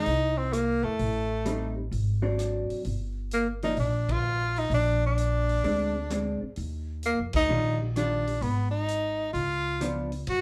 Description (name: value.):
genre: jazz, small-group swing and bop.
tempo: 129 BPM.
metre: 4/4.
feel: swing 67% on 8ths.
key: Eb major.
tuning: A4 = 439 Hz.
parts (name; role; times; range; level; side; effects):
clear tenor saxophone; melody; 0.0-10.4 s; A3 to Gb4; -30 LUFS; equal; none.
vintage hollow-body jazz guitar; accompaniment; 0.0-10.1 s; Eb3 to F4; -34 LUFS; equal; none.
upright bass; bass; 0.1-10.4 s; G1 to Gb2; -32 LUFS; equal; none.
vintage drum kit; drums; 0.1-10.4 s; hi-hat, kick drum, ride cymbal, rim click; -42 LUFS; equal; none.
room: wet studio reverb, RT60 0.6 s.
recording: heard from further back in the room.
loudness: -28 LUFS.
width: mono.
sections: 0.0-10.3 A section.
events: band accent 4.0, 7.3.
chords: 0.0 F7(no3) (rootless); 1.0 Am7b5; 1.9 Ab7#11; 2.9 Gm7; 4.7 Bb9; 6.6 Ebmaj9; 8.4 Ab5; 9.4 Db7b9.